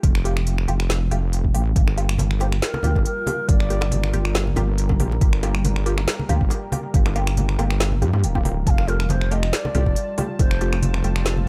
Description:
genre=deep dubstep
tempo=139 BPM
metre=4/4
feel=swing 54% on 16ths, half-time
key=G minor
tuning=A4 = 441 Hz
part: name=wobble bass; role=bass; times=0.0-11.5 s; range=D1 to G2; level=-23 LUFS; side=equal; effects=chorus
part: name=deep house drum kit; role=drums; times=0.0-11.3 s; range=finger snaps, hi-hat, snare drum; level=-30 LUFS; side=equal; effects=small room ambience
part: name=electronic kick drum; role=drums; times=0.0-10.5 s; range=none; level=-22 LUFS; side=equal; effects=small room ambience
part: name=filtered dub chord stab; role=stabs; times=0.2-11.2 s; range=A3 to G4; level=-33 LUFS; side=equal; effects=phaser, analog chorus, cassette tape, dub echo
part: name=dark analog pad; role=sustained chords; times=2.3-11.5 s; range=G3 to A5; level=-36 LUFS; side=equal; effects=chorus
part: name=bongos and congas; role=percussion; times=1.9-11.5 s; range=none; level=-31 LUFS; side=equal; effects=dub echo
part: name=long shakuhachi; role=melody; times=2.4-4.3, 8.7-10.8 s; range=Bb4 to A5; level=-32 LUFS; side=equal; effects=dub echo
room=digital ambience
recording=dry, gritty hardware recording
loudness=-21 LUFS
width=mono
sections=0.0-11.5 A section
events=none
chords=0.0 Fadd9; 1.8 Gm7; 8.7 Fadd9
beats=| 0.03 0.47 0.90 1.33 | 1.76 2.19 2.62 3.06 | 3.49 3.92 4.35 4.78 | 5.21 5.64 6.08 6.51 | 6.94 7.37 7.80 8.23 | 8.67 9.10 9.53 9.96 | 10.39 10.82 11.26

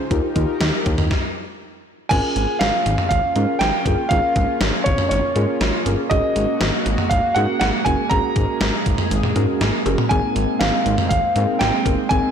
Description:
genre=synth-pop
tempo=120 BPM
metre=4/4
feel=straight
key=unclear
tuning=A4 = 440 Hz
part: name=chorused pulse-width pad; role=sustained chords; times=0.0-12.3 s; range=Eb3 to Bb4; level=-27 LUFS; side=right 4 dB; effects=none
part: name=muted felt-like synth keys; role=accompaniment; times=0.1-12.3 s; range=C4 to Bb4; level=-25 LUFS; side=equal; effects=chorus
part: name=fat analog bass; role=bass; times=0.1-12.2 s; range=Gb1 to Ab2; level=-22 LUFS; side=equal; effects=none
part: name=gated 80s digital drum machine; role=drums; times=0.1-12.2 s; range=cowbell, crash cymbal, hi-hat, kick drum, snare drum, toms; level=-22 LUFS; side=equal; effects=gated reverb, gated reverb snare
part: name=warm baby grand piano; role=melody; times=2.1-12.3 s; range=Db5 to Bb5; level=-21 LUFS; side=right 1 dB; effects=ping-pong delay
room=moderate lush hall reverb, RT60 2.3 s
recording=blown-out, overdriven recording, overdrive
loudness=-17 LUFS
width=side -7 dB against mid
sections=0.0-2.1 A section; 2.1-12.3 B section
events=stop 1.1-2.1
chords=0.1 Ebadd9; 2.1 Db6; 6.1 Gbadd9; 10.1 Abadd9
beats=| 0.11 0.61 1.11 1.61 | 2.11 2.61 3.11 3.61 | 4.11 4.61 5.11 5.61 | 6.11 6.61 7.11 7.61 | 8.11 8.61 9.11 9.61 | 10.11 10.61 11.11 11.61 | 12.11

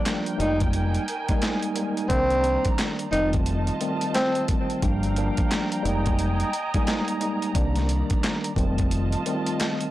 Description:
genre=hip hop, boom-bap hip-hop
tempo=88 BPM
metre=4/4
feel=swing 62% on 16ths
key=unclear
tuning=A4 = 440 Hz
part: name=mellow tine electric piano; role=accompaniment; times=0.0-9.9 s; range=Eb3 to Eb4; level=-28 LUFS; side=equal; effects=medium stereo tremolo, cassette tape, high-pass filter, low-pass filter, plate reverb
part: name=dark studio string section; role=sustained chords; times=0.0-9.9 s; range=Eb3 to Bb5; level=-32 LUFS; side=right 2 dB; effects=high-pass filter, low-pass filter, plate reverb
part: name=dusty soul sampler-style drum kit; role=drums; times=0.1-9.9 s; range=handclaps, hi-hat, kick drum, snare drum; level=-26 LUFS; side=equal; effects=overdrive
part: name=breathy tenor saxophone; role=melody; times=0.4-4.5 s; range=C4 to Eb4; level=-26 LUFS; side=equal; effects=high-pass filter, low-pass filter, tape echo, plate reverb
part: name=deep dub fingered electric bass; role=bass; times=0.4-9.1 s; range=F1 to C2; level=-26 LUFS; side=equal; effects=transformer saturation
room=light reverb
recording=blown-out, overdriven recording, overdrive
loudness=-22 LUFS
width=side -15 dB against mid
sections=0.0-9.9 A section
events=none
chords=0.4 Fm11; 2.1 Cm9; 3.1 F7; 4.8 Gm7; 5.8 Fm11; 7.6 Cm9; 8.6 F7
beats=0.05 0.73 1.42 | 2.10 2.78 3.46 4.14 | 4.83 5.51 6.19 6.87 | 7.55 8.23 8.92 9.60

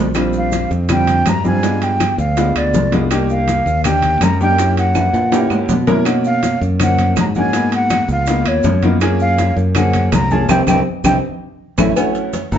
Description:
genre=Afro-Cuban jazz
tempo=163 BPM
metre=4/4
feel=straight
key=unclear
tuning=A4 = 440 Hz
part: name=warm upright piano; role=accompaniment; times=0.0-12.6 s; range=F3 to Bb4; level=-19 LUFS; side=left 1 dB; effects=none
part: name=fingered electric bass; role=bass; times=0.0-12.6 s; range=G1 to Cb3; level=-18 LUFS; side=equal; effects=none
part: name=bongos and cowbell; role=percussion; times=0.1-12.5 s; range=none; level=-26 LUFS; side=left 4 dB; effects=none
part: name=maracas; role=percussion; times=0.1-12.6 s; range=none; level=-34 LUFS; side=right 6 dB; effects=none
part: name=claves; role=percussion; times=0.2-12.2 s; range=none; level=-28 LUFS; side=right 7 dB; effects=none
part: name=congas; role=percussion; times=0.2-12.6 s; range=none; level=-22 LUFS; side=left 2 dB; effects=none
part: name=timbales and agogo bells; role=percussion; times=0.2-12.5 s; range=none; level=-24 LUFS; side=right 5 dB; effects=none
part: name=breathy mellow concert flute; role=melody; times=0.4-12.6 s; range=Db5 to A#5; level=-19 LUFS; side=equal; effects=none
room=wet club reverb, RT60 0.9 s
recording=heard from further back in the room, nothing above 7.7 kHz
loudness=-13 LUFS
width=side -9 dB against mid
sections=0.2-12.0 A section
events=drum fill 0.0, 5.0-6.1, 11.2-12.0; band accent 10.5-12.0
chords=0.2 Bb6; 1.6 G7b9; 3.1 Cm9; 4.6 Gb7b9; 6.1 Bmaj9; 7.5 Abm7; 8.3 Db13; 9.0 Gbmaj9; 10.5 Cm; 11.2 A; 12.0 A6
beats=| 0.16 0.53 0.90 1.26 | 1.63 2.00 2.37 2.74 | 3.11 3.48 3.85 4.22 | 4.59 4.96 5.32 5.69 | 6.06 6.43 6.80 7.17 | 7.54 7.91 8.28 8.64 | 9.02 9.38 9.75 10.12 | 10.49 10.86 11.23 11.60 | 11.97 12.34

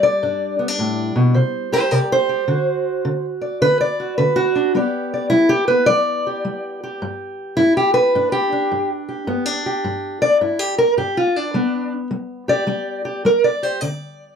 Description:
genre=acoustic country blues, solo or duo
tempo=106 BPM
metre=4/4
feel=swing 65% on 8ths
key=G major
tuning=A4 = 440 Hz
part: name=fingerpicked steel-string acoustic guitar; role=solo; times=0.0-14.4 s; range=G2 to D5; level=-16 LUFS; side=equal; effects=none
room=wet booth ambience, RT60 0.2 s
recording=none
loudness=-16 LUFS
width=side -7 dB against mid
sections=0.0-4.8 A section; 4.8-14.4 A section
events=steel-string acoustic guitar solo 0.0-14.4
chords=0.2 G; 1.4 C5; 2.5 D; 4.8 G; 13.8 D5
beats=| 0.23 0.79 1.36 1.92 | 2.49 3.05 3.62 4.18 | 4.75 5.32 5.88 6.45 | 7.01 7.58 8.15 8.71 | 9.28 9.85 10.41 10.98 | 11.54 12.11 12.68 13.24 | 13.81

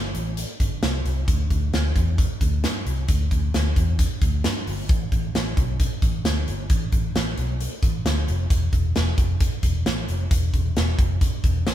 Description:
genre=jangly indie pop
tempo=133 BPM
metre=4/4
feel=straight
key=A minor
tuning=A4 = 441 Hz
part: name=vintage muted fingered electric bass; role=bass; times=0.0-11.7 s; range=E1 to G2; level=-24 LUFS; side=left 1 dB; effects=none
part: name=big rock drum kit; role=drums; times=0.1-11.7 s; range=hi-hat, kick drum, snare drum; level=-22 LUFS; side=equal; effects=none
room=light reverb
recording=band playing live in one room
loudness=-20 LUFS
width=side -12 dB against mid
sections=0.0-11.7 A section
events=none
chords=none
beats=0.38 0.83 | 1.28 1.73 2.18 2.63 | 3.09 3.54 3.99 4.44 | 4.89 5.34 5.79 6.25 | 6.70 7.15 7.60 8.05 | 8.51 8.96 9.41 9.86 | 10.31 10.76 11.21 11.66

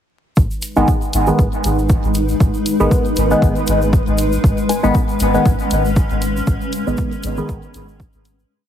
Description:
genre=dub techno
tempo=118 BPM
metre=4/4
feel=swing 55% on 16ths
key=G# minor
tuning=A4 = 439 Hz
part: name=granular cloud pad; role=sustained chords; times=1.3-8.5 s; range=G#3 to B4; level=-21 LUFS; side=left 1 dB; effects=built-in reverb, sidechain pumping
part: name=soft dub sub bass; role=bass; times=0.4-8.4 s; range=G#1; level=-20 LUFS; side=equal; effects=sidechain pumping
part: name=electronic kick drum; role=drums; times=0.4-8.1 s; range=none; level=-16 LUFS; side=equal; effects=none
part: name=egg shaker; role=percussion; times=0.4-8.5 s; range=none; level=-33 LUFS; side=right 1 dB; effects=none
part: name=electronic hi-hat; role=drums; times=0.6-8.4 s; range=none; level=-26 LUFS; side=left 2 dB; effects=none
part: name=resonant sweep polysynth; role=stabs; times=0.8-7.6 s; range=D#3 to B3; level=-19 LUFS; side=equal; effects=chorus, phaser, sidechain pumping, dub echo
part: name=filtered dub chord stab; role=riff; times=4.7-4.9 s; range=D#4 to G#5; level=-28 LUFS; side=left 4 dB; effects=chorus, sidechain pumping, dub echo
room=light reverb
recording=heavily compressed radio sound, vinyl crackle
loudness=-14 LUFS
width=side -10 dB against mid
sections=0.4-8.5 groove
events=filter sweep on analog polysynth 0.4-8.5; fade-out 5.8-8.5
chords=0.4 G#m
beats=| 0.37 0.88 1.39 1.90 | 2.40 2.91 3.42 3.93 | 4.44 4.95 5.46 5.96 | 6.47 6.98 7.49 8.00

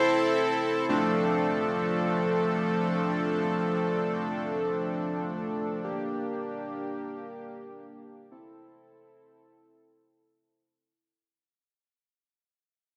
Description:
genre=synthwave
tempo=free time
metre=none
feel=none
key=D minor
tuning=A4 = 440 Hz
part: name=breathy alto saxophone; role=melody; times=0.0-0.6 s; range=C5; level=-32 LUFS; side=equal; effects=delay
part: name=soft supersaw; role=sustained chords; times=0.0-10.8 s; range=F3 to A4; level=-29 LUFS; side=equal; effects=low-pass filter
room=wet recital hall reverb, RT60 1.3 s, small room ambience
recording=dense, heavily limited modern master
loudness=-28 LUFS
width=mono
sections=0.9-10.8 A section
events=fade-out 0.9-10.8; filter sweep on supersaw synth 0.9-10.8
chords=0.0 Am; 0.9 Dm7; 5.8 Gm; 8.3 Am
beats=free time

